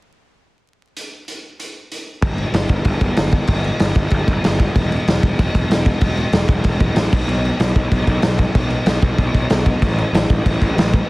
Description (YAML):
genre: punk rock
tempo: 190 BPM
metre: 4/4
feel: straight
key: unclear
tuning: A4 = 440 Hz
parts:
  - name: raw garage drum kit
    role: drums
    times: 1.0-11.0 s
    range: crash cymbal, hi-hat, kick drum, snare drum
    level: -16 LUFS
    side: equal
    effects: none
  - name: fuzz picked electric bass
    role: bass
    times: 2.2-11.0 s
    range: E1 to B1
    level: -20 LUFS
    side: equal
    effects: overdrive
room: little or no reverb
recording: dense, heavily limited modern master, vinyl crackle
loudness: -14 LUFS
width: side -22 dB against mid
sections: 1.0-2.2 A section; 2.2-11.1 B section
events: none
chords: none